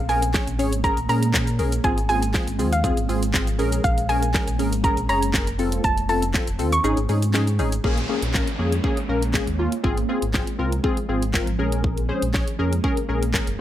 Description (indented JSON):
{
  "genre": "dance-pop",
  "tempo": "120 BPM",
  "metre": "4/4",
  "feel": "straight",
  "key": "Bb minor",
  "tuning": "A4 = 439 Hz",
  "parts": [
    { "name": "soft round pluck", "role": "melody", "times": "0.0-7.2 s", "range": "F5 to Db6", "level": "-25 LUFS", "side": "equal", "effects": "chorus, tape echo" },
    { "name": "ethereal airy pad", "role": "sustained chords", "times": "0.0-13.6 s", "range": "Db3 to Db4", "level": "-30 LUFS", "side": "right 2 dB", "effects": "ensemble chorus, built-in reverb, phaser, sidechain pumping" },
    { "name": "sub bass with octave", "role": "bass", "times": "0.0-13.6 s", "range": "F1 to Bb2", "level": "-24 LUFS", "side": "equal", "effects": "sidechain pumping" },
    { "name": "funky polysynth comp", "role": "accompaniment", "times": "0.1-13.5 s", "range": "Bb3 to Db5", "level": "-26 LUFS", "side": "left 2 dB", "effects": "chorus, sidechain pumping" },
    { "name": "pop drum kit", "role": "drums", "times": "0.1-13.6 s", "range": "handclaps, hi-hat, kick drum, shaker, snare drum", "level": "-25 LUFS", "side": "equal", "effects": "none" },
    { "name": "downlifter and swell", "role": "sound effects", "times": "7.8-13.6 s", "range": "none", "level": "-35 LUFS", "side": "equal", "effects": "none" }
  ],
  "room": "light reverb",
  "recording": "none",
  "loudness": "-20 LUFS",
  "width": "side -12 dB against mid",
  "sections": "0.0-7.8 A section; 7.8-13.6 B section",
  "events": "kick muted 6.8-7.8",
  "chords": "0.0 Bbm7; 1.8 Fm/Ab; 3.6 Bbm7; 5.6 F; 6.8 Absus4; 7.8 Bbm7; 9.8 Fm/Ab; 11.6 Bbm7"
}